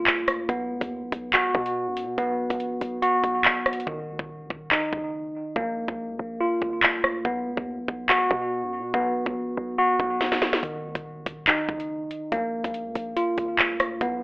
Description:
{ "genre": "hip hop, drill", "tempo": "142 BPM", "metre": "4/4", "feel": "half-time", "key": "unclear", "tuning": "A4 = 436 Hz", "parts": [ { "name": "mellow tine electric piano", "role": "arpeggios", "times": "0.0-14.2 s", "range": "Eb3 to F#4", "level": "-26 LUFS", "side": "equal", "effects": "slow stereo tremolo, low-pass filter, tape echo" }, { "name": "hard-hitting 808-style bass", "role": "bass", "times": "0.0-14.2 s", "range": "Eb1 to B2", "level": "-34 LUFS", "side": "equal", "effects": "none" }, { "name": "drill drum kit", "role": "drums", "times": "0.1-14.1 s", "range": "handclaps, hi-hat, kick drum, rim click, snare drum", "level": "-22 LUFS", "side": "equal", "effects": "none" }, { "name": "riser", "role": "sound effects", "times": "14.2 s", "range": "none", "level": "-44 LUFS", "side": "equal", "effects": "none" } ], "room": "moderate plate reverb, RT60 1.0 s, digital ambience", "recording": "telephone sound", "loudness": "-23 LUFS", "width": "side -25 dB against mid", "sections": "0.0-14.2 A section", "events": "hi-hats muted 3.9-10.6; drum fill 10.2-10.6", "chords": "0.5 B5; 3.9 Eb5; 5.6 Bb5; 7.2 B5; 10.6 Eb5; 12.3 Bb5", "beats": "0.07 | 0.49 0.91 1.33 1.76 | 2.18 2.60 3.02 3.45 | 3.87 4.29 4.71 5.14 | 5.56 5.98 6.41 6.83 | 7.25 7.67 8.10 8.52 | 8.94 9.36 9.79 10.21 | 10.63 11.05 11.48 11.90 | 12.32 12.74 13.17 13.59 | 14.01" }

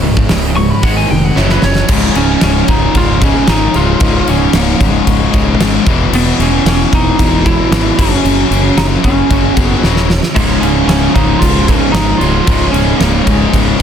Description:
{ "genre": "hard rock", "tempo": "113 BPM", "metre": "4/4", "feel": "straight", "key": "unclear", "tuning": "A4 = 440 Hz", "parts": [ { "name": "cranked stack guitar", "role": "riff", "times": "0.0-1.9, 10.4-13.8 s", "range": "Db2 to Ab3", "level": "-18 LUFS", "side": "right 10 dB", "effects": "overdrive" }, { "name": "distorted electric guitar", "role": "riff", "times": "0.0-13.8 s", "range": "Db2 to Ab3", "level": "-18 LUFS", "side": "left 11 dB", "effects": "overdrive" }, { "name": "distorted electric guitar", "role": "riff", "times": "0.0-13.8 s", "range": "Db2 to Ab3", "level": "-20 LUFS", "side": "equal", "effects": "overdrive" }, { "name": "fuzz fingered electric bass", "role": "bass", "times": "0.0-13.8 s", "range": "Db1 to Ab1", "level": "-16 LUFS", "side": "equal", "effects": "overdrive" }, { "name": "huge arena drum kit", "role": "drums", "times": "0.2-13.8 s", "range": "crash cymbal, hi-hat, kick drum, snare drum", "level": "-13 LUFS", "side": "equal", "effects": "none" }, { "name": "lightly driven lead guitar", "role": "melody", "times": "0.6-13.8 s", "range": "Ab3 to Db6", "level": "-16 LUFS", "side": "right 1 dB", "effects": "none" } ], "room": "small room ambience", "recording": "dense, heavily limited modern master", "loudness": "-9 LUFS", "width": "side -8 dB against mid", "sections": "0.0-1.9 A section; 1.9-13.8 B section", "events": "lead electric guitar solo 0.0-1.9; drum fill 1.4-1.9, 9.8-10.4", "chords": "0.0 Db5; 0.8 Ab5; 1.4 Gb5; 1.9 Db5; 5.9 E5; 8.0 Gb5; 10.4 Db", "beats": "0.30 0.83 1.36 | 1.89 2.42 2.95 3.48 | 4.01 4.54 5.08 5.61 | 6.13 6.67 7.19 7.72 | 8.25 8.78 9.31 9.84 | 10.37 10.90 11.43 11.95 | 12.48 13.01 13.54" }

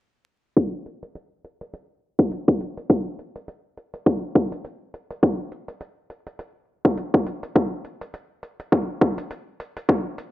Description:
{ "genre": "glitch hop", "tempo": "103 BPM", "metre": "4/4", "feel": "swing 57% on 16ths", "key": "none", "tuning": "none", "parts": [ { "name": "electronic hi-hat", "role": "drums", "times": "0.6-10.3 s", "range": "none", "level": "-39 LUFS", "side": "right 1 dB", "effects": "studio reverb" }, { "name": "electronic kick drum", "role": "drums", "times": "0.6-10.0 s", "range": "none", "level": "-18 LUFS", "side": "equal", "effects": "high-pass filter on kick, studio reverb" } ], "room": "little or no reverb", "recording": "vinyl crackle, low-pass filter", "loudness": "-21 LUFS", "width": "side -16 dB against mid", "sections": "0.6-10.3 A section", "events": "filter sweep 0.6-10.3", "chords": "none", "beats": "| 0.57 1.15 1.73 2.31 | 2.90 3.48 4.06 4.64 | 5.23 5.81 6.39 6.97 | 7.56 8.14 8.72 9.30 | 9.89" }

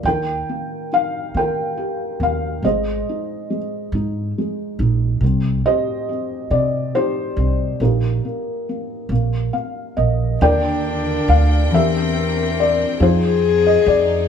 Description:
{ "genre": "acoustic folk-pop ballad", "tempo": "46 BPM (dotted quarters)", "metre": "6/8", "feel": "straight", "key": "Eb major", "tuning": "A4 = 440 Hz", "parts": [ { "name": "felt-muted upright piano", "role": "melody", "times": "0.0-14.3 s", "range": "D3 to G5", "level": "-20 LUFS", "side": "left 1 dB", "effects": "none" }, { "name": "upright bass", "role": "bass", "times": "0.0-14.3 s", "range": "Ab1 to Eb3", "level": "-19 LUFS", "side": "right 1 dB", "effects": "none" }, { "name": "warm cello", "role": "second line", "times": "10.4-14.3 s", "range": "C4 to Ab4", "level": "-20 LUFS", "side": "left 8 dB", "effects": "none" }, { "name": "rich studio string section", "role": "sustained chords", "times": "10.4-14.3 s", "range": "D3 to G5", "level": "-26 LUFS", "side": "left 3 dB", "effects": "none" } ], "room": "moderate studio reverb, RT60 0.8 s", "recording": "band playing live in one room", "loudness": "-17 LUFS", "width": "side -7 dB against mid", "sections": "0.0-10.4 A section; 10.4-14.3 B section", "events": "felt piano fill 9.1-10.4", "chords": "0.0 Eb; 2.6 Ab; 5.2 Cm; 7.8 Eb/Bb; 10.4 Ebmaj7; 11.7 C7/E; 13.0 Fm7", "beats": "| 0.04 1.34 | 2.63 3.92 | 5.21 6.51 | 7.80 9.10 | 10.41 11.71 | 13.00" }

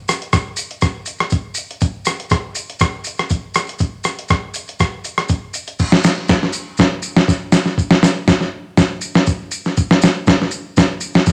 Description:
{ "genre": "highlife", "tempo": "121 BPM", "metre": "4/4", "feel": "straight", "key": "none", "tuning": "none", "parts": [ { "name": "dusty soul sampler-style drum kit", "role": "drums", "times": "0.1-11.3 s", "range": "crash cymbal, hi-hat, kick drum, rim click, snare drum", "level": "-17 LUFS", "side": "equal", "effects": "none" }, { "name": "maracas", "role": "percussion", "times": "0.1-11.3 s", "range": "none", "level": "-30 LUFS", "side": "equal", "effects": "none" } ], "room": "moderate large studio reverb, RT60 1.0 s", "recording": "none", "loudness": "-17 LUFS", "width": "mono", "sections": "0.0-5.8 A section; 5.8-11.3 B section", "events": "none", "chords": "none", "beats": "0.33 0.82 1.32 | 1.82 2.31 2.81 3.31 | 3.80 4.30 4.79 5.29 | 5.79 6.29 6.78 7.28 | 7.78 8.27 8.77 9.27 | 9.77 10.26 10.76 11.26" }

